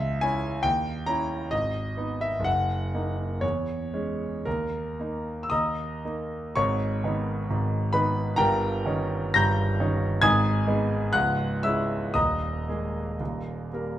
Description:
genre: classical, romantic character piece for solo piano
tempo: 55-71 BPM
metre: 2/4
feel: rubato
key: G# minor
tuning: A4 = 440 Hz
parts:
  - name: clear concert grand piano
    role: solo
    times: 0.0-14.0 s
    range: C#1 to A#6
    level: -24 LUFS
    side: equal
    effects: none
room: moderate recital hall reverb, RT60 1.4 s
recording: none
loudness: -24 LUFS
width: side -12 dB against mid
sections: 0.0-6.6 A section; 6.6-14.0 B section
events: none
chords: 0.0 C#m; 0.6 D#7b9; 1.5 G#m; 2.5 D#m/F#; 3.4 C#m/E; 4.5 D#5; 6.6 G#m; 8.4 D#7/G; 10.2 G#m; 11.1 C#m; 12.2 D#sus4; 13.2 D#

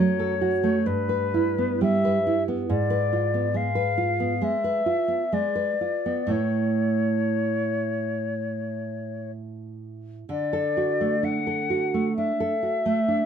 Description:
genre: romantic duo for flute and classical guitar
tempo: 58-70 BPM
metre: 4/4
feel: rubato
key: D major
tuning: A4 = 442 Hz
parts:
  - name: silver concert flute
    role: melody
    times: 0.0-13.3 s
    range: B4 to F#5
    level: -26 LUFS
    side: left 4 dB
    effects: none
  - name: nylon-string guitar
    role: accompaniment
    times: 0.0-13.3 s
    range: F#2 to B4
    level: -25 LUFS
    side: right 3 dB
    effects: none
room: moderate studio ambience, RT60 0.5 s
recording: none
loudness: -22 LUFS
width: side -8 dB against mid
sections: 0.0-13.3 A section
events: none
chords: 0.0 D/F# (rootless); 0.9 Em/G; 2.7 G#dim7; 6.3 A; 10.3 D

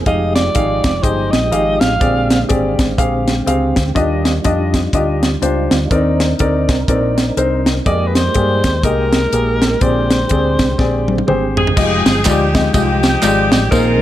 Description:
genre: uptempo gospel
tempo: 123 BPM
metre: 4/4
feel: swing 60% on 8ths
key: unclear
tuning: A4 = 440 Hz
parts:
  - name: mellow tonewheel organ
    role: sustained chords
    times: 0.0-14.0 s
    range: D3 to G5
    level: -23 LUFS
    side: right 2 dB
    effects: slow rotary speaker, chorus vibrato
  - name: fingered electric bass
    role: bass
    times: 0.0-14.0 s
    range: F1 to G2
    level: -19 LUFS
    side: equal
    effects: none
  - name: breathy alto saxophone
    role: melody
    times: 0.1-2.5, 7.9-11.3 s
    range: Bb4 to F5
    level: -20 LUFS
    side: right 1 dB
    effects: tape echo
  - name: dark grand piano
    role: accompaniment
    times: 0.1-14.0 s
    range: Bb2 to F5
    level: -18 LUFS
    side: left 2 dB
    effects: none
  - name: tight funk drum kit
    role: drums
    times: 0.1-13.9 s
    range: crash cymbal, hi-hat, kick drum, ride cymbal, snare drum, toms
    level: -16 LUFS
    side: equal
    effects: none
  - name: clear saxophone section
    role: melody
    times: 11.6-14.0 s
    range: C4 to Bb4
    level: -17 LUFS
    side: equal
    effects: tape echo
  - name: tambourine and handclaps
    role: percussion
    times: 11.8-13.9 s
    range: none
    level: -25 LUFS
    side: right 4 dB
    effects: none
room: light reverb, small room reverb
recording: none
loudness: -12 LUFS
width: side -13 dB against mid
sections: 0.0-11.8 A section; 11.8-14.0 B section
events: drum fill 10.8-11.8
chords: 0.1 Fm9; 2.0 Bb13; 4.0 Ebmaj9; 5.9 Cm9; 7.9 Fm11; 9.8 Bb13; 11.8 Fm9

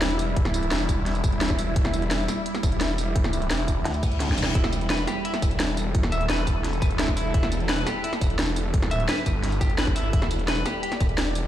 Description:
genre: dark technical drum and bass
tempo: 172 BPM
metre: 4/4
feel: straight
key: E minor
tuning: A4 = 440 Hz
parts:
  - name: swarming drone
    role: sustained chords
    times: 0.0-11.5 s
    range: G3 to E5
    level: -30 LUFS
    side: equal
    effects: built-in reverb, sidechain pumping
  - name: snarling distorted saw bass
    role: bass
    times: 0.0-11.5 s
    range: E1 to G1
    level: -27 LUFS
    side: equal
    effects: distortion, overdrive, sidechain pumping
  - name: drum and bass drum kit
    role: drums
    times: 0.0-11.4 s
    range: hi-hat, snare drum, tambourine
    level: -28 LUFS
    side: equal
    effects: none
  - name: electronic kick drum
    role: drums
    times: 0.4-11.1 s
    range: none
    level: -23 LUFS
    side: equal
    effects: none
  - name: metallic wobble bass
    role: bass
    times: 3.9-4.5 s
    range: E1 to D2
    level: -26 LUFS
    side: equal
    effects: distortion, chorus
  - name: reverse cymbal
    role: sound effects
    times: 4.0-4.6 s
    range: none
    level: -36 LUFS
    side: left 4 dB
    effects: none
  - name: electric guitar at the edge of break-up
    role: arpeggios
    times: 4.6-11.0 s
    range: E4 to E5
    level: -31 LUFS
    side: left 1 dB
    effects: vibrato effect, sidechain pumping, ping-pong delay
room: light reverb, digital ambience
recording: played on a big sound system in a bare room, large studio reverb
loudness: -22 LUFS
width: side -12 dB against mid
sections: 0.0-11.5 A section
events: reverse cymbal 4.0-4.6; drum fill 4.2-4.6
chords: 0.0 Em

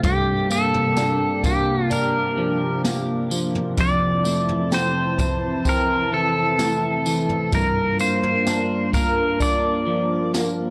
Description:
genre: dream pop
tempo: 64 BPM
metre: 4/4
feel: straight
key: G dorian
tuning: A4 = 438 Hz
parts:
  - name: pedal steel guitar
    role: melody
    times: 0.0-10.3 s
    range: G4 to D5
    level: -24 LUFS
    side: equal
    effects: tape echo
  - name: warbly tape-like pad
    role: sustained chords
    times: 0.0-10.7 s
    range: C3 to A5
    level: -28 LUFS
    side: equal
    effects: chorus, built-in reverb
  - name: clean electric guitar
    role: arpeggios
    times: 0.0-10.7 s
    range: F2 to D4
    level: -27 LUFS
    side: equal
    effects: analog chorus, tape echo
  - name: jazz brush drum kit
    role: drums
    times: 0.0-10.6 s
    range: kick drum, snare drum, tambourine, toms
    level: -28 LUFS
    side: equal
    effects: none
room: light reverb, studio reverb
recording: lossy compression artefacts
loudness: -21 LUFS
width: mono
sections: 0.0-10.7 A section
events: none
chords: 0.0 Gm7; 3.8 Fmaj7; 7.5 Gm7

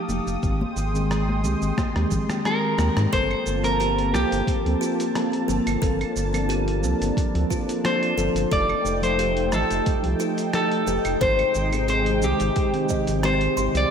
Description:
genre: sunset chillout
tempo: 89 BPM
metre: 4/4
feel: swing 53% on 16ths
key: G minor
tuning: A4 = 440 Hz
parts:
  - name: clean electric guitar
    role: melody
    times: 0.0-13.9 s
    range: G4 to D5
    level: -25 LUFS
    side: equal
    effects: ping-pong delay
  - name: mellow tine electric piano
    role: accompaniment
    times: 0.0-13.9 s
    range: Eb3 to G5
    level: -27 LUFS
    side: equal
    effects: auto-pan, ping-pong delay, slapback echo
  - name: lush unison pad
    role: sustained chords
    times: 0.0-13.9 s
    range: C3 to Eb6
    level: -28 LUFS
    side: equal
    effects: chorus
  - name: round analog bass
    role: bass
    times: 0.1-13.8 s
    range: F1 to Ab2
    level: -26 LUFS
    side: equal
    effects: none
  - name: dusty soul sampler-style drum kit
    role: drums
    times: 0.1-13.9 s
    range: cabasa, claves, hi-hat, rim click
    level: -33 LUFS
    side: right 1 dB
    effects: small room reverb
  - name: congas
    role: percussion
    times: 0.1-2.9 s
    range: none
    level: -33 LUFS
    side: left 3 dB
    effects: none
  - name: electronic kick drum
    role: drums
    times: 0.4-13.0 s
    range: none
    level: -26 LUFS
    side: equal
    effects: small room reverb
  - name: kalimba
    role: arpeggios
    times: 3.1-13.8 s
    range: F4 to C6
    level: -30 LUFS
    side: left 1 dB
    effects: ping-pong delay, slapback echo
room: wet lush hall reverb, RT60 2.0 s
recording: big arena sound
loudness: -20 LUFS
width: side -7 dB against mid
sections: 0.0-3.1 A section; 3.1-13.9 B section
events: drum fill 1.8-3.1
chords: 0.4 Abmaj7; 3.1 Gm11; 8.5 F9; 11.2 Abmaj7

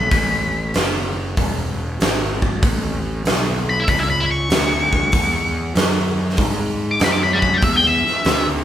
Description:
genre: blues rock power trio and southern rock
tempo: 96 BPM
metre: 4/4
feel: swing 67% on 8ths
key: unclear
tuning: A4 = 440 Hz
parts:
  - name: octave-fuzz lead guitar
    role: melody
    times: 0.0-8.5 s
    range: E5 to D6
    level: -18 LUFS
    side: left 2 dB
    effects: wah, distortion
  - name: fuzz picked electric bass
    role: bass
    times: 0.0-8.6 s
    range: E1 to G#2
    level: -22 LUFS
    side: equal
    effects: overdrive
  - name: big rock drum kit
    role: drums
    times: 0.1-8.5 s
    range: hi-hat, kick drum, snare drum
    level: -19 LUFS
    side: equal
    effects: none
room: light reverb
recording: band playing live in one room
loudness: -16 LUFS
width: side -11 dB against mid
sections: 0.0-8.6 A section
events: lead electric guitar solo 0.0-8.6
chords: 0.1 A; 5.1 E

